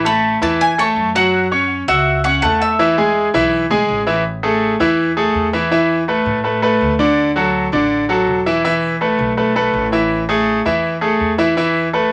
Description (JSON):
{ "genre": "latin, Cuban son and guajira", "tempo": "164 BPM", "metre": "4/4", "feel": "straight", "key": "A major", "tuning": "A4 = 440 Hz", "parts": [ { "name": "Cuban tres", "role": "melody", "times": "0.0-3.9 s", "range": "C#5 to B5", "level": "-21 LUFS", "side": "equal", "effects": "none" }, { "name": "bright concert grand piano", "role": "arpeggios", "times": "0.0-12.1 s", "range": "D3 to F#6", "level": "-16 LUFS", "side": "equal", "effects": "none" }, { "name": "upright bass", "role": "bass", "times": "0.0-12.1 s", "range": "E1 to A2", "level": "-29 LUFS", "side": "equal", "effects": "none" } ], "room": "wet small room ambience, RT60 0.5 s", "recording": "none", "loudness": "-16 LUFS", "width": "mono", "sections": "0.0-4.3 A section; 4.3-12.1 B section", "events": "none", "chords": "0.0 A; 1.3 F#m; 2.8 E; 4.3 A5; 5.7 E7sus4; 7.2 D; 8.6 Esus4; 10.1 A5; 11.6 Esus4", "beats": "0.23 0.60 0.96 | 1.33 1.69 2.06 2.42 | 2.79 3.15 3.52 3.88 | 4.25 4.62 4.98 5.35 | 5.71 6.08 6.44 6.81 | 7.18 7.54 7.91 8.27 | 8.64 9.00 9.37 9.73 | 10.10 10.47 10.83 11.20 | 11.56 11.93" }